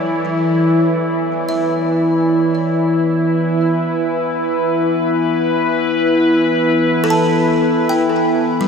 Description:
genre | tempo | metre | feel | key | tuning
ambient | free time | none | none | unclear | A4 = 440 Hz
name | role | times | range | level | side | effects
evolving wavetable pad | sustained chords | 0.0-8.7 s | E3 to D5 | -14 LUFS | equal | chorus, built-in reverb
buzzing kalimba | arpeggios | 0.0-8.7 s | F#3 to A5 | -23 LUFS | equal | tape echo
analog drone | drone | 1.2-8.7 s | E3 to B3 | -23 LUFS | equal | chorus
room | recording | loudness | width
wet huge ambient reverb, RT60 7.8 s | in a vast, echoing space | -14 LUFS | side -6 dB against mid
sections
0.3-8.7 A section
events
none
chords
0.3 E5

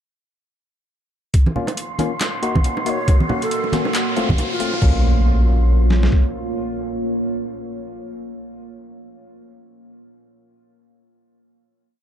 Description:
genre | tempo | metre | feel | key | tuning
deep dubstep | 138 BPM | 4/4 | swing 58% on 16ths, half-time | Bb harmonic minor | A4 = 443 Hz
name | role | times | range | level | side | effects
deep dark ambient pad | sustained chords | 2.3-8.3 s | Bb3 to Db5 | -26 LUFS | right 1 dB | chorus, built-in reverb
soft dub sub bass | bass | 1.3-6.1 s | Bb1 | -15 LUFS | equal | high-pass filter
deep house drum kit | drums | 1.3-4.9 s | crash cymbal, handclaps, hi-hat, snare drum | -28 LUFS | equal | overdrive, high-pass filter on hats, high-pass filter on snare, high-pass filter on cymbals
trip hop sampler-style drum kit | drums | 1.3-6.2 s | kick drum, snare drum | -16 LUFS | equal | none
riser and impact | sound effects | 2.9-8.3 s | none | -29 LUFS | equal | none
wind-like tuned noise texture | texture | 1.7-4.8 s | C6 | -30 LUFS | right 2 dB | built-in reverb
congas and bongos | percussion | 1.5-4.8 s | none | -25 LUFS | right 2 dB | none
percussive organ stab | stabs | 1.6-8.3 s | A3 to Gb4 | -26 LUFS | left 4 dB | chorus, dub echo
breathy bright long shakuhachi | melody | 2.9-4.8 s | F4 to F5 | -30 LUFS | right 1 dB | dub echo
room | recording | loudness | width
light reverb | dark, warm production | -16 LUFS | side -9 dB against mid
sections
1.3-4.8 build; 4.8-8.3 final chord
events
build-up 1.3-4.8; riser 2.9-4.8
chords
1.3 Bbm; 2.2 Ebm; 3.1 Gb; 3.9 F; 4.8 Bbm

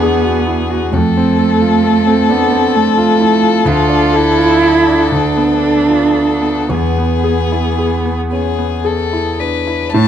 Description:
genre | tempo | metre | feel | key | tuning
classical, slow romantic movement for piano trio | 36-45 BPM (dotted quarters) | 6/8 | rubato | unclear | A4 = 440 Hz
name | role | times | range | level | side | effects
dark violin | melody | 0.0-10.1 s | G#4 to A5 | -17 LUFS | left 8 dB | none
dark cello | second line | 0.0-10.1 s | A3 to F4 | -14 LUFS | right 4 dB | none
clear concert grand piano | accompaniment | 0.0-10.1 s | D2 to A4 | -15 LUFS | equal | none
room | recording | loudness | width
moderate large studio reverb, RT60 1.5 s | dark, warm production | -11 LUFS | side -9 dB against mid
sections
0.0-9.9 A section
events
none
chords
0.0 E9; 0.9 F; 3.7 Dm; 5.1 Bm7b5/D; 6.7 E

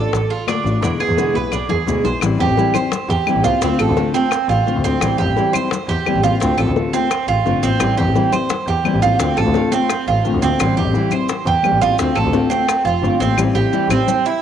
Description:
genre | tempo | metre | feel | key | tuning
latin, Cuban son and guajira | 172 BPM | 4/4 | straight | A minor | A4 = 440 Hz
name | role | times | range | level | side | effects
nylon-string guitar | accompaniment | 0.0-14.1 s | B2 to F4 | -21 LUFS | left 6 dB | cassette tape
Cuban tres | arpeggios | 0.0-14.4 s | C4 to C5 | -18 LUFS | right 6 dB | cassette tape
clear double bass | bass | 0.1-14.0 s | F1 to E2 | -20 LUFS | equal | none
bongos and cowbell | percussion | 0.1-14.3 s | none | -27 LUFS | left 8 dB | none
congas | percussion | 0.1-14.4 s | none | -28 LUFS | left 8 dB | none
maracas | percussion | 0.1-14.4 s | none | -34 LUFS | right 8 dB | none
claves | percussion | 0.5-14.1 s | none | -27 LUFS | left 10 dB | none
room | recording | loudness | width
moderate lush hall reverb, RT60 3.0 s | home recording on cassette | -14 LUFS | side -9 dB against mid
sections
0.0-2.2 A section; 2.2-13.4 B section; 13.4-14.4 C section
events
drum fill 1.4-2.2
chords
0.0 Dm; 0.8 E7; 2.2 Am7 (rootless); 3.6 Dm7; 5.0 Am7; 6.4 Dm7; 7.8 Am7; 9.2 Dm7; 10.6 Am7; 12.0 Dm7; 13.4 Am7

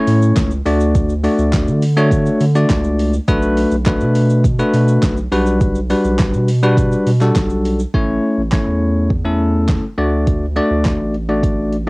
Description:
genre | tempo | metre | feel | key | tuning
dance-pop | 103 BPM | 4/4 | straight | D major | A4 = 440 Hz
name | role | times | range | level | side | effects
bell-like tine electric piano | accompaniment | 0.0-11.9 s | G3 to D5 | -16 LUFS | left 1 dB | sidechain pumping, cassette tape
round analog bass | bass | 0.1-11.9 s | A1 to D3 | -17 LUFS | equal | sidechain pumping
deep house drum kit | drums | 0.1-11.9 s | handclaps, hi-hat, kick drum, shaker, snare drum | -18 LUFS | equal | cassette tape
room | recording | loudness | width
light reverb | home recording on cassette | -13 LUFS | side -25 dB against mid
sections
0.0-7.9 A section; 7.9-11.9 B section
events
none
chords
0.0 A; 0.7 D; 3.3 Bm7; 5.3 Gmaj7/B; 7.9 A; 10.0 D

